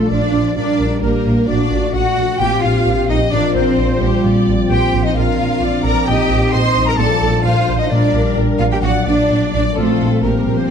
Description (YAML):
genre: cinematic, heroic adventure film score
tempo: 130 BPM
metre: 4/4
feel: straight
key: unclear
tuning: A4 = 440 Hz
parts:
  - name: clear chamber violin section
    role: melody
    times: 0.0-10.7 s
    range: G4 to C6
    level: -26 LUFS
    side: left 6 dB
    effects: none
  - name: mellow clarinet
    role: second line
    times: 0.0-10.7 s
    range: G4 to C6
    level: -26 LUFS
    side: equal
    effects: none
  - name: mellow hollow small flute group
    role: second line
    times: 0.0-10.7 s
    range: G4 to C6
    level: -25 LUFS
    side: right 2 dB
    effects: none
  - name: rich symphonic violin section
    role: second line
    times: 0.0-10.7 s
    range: G4 to C6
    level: -27 LUFS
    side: left 3 dB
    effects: none
  - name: rich symphonic viola section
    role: accompaniment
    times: 0.0-10.7 s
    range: F4 to Eb5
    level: -26 LUFS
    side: left 1 dB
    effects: none
  - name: dark French horn section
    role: sustained chords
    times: 0.0-10.7 s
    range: F3 to G4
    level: -21 LUFS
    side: left 2 dB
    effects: none
  - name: concert harp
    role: arpeggios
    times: 0.0-10.7 s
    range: Bb2 to Eb5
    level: -23 LUFS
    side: left 11 dB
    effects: none
  - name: rich symphonic cello section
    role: bass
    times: 0.0-10.7 s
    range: G3 to C5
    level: -19 LUFS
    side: right 2 dB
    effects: none
  - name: rich symphonic double bass section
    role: bass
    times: 0.1-10.5 s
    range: Bb1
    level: -19 LUFS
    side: right 3 dB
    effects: none
room: wet recital hall reverb, RT60 1.6 s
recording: dark, warm production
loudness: -13 LUFS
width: side -7 dB against mid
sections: 0.0-10.7 A section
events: none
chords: 0.0 Dm/Bb; 0.6 Gm/Bb; 1.5 D/Bb; 2.4 Fsus2/Bb; 3.3 Bbadd9; 4.2 Fsus2/Bb; 5.2 Bbadd9; 6.1 Cm/Bb; 7.0 Dm/Bb; 7.9 Gm/Bb; 8.8 D/Bb; 9.8 Fsus2/Bb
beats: 0.10 0.57 1.03 | 1.49 1.95 2.41 2.87 | 3.33 3.79 4.25 4.71 | 5.16 5.62 6.08 6.54 | 6.99 7.45 7.91 8.37 | 8.83 9.30 9.76 10.23 | 10.70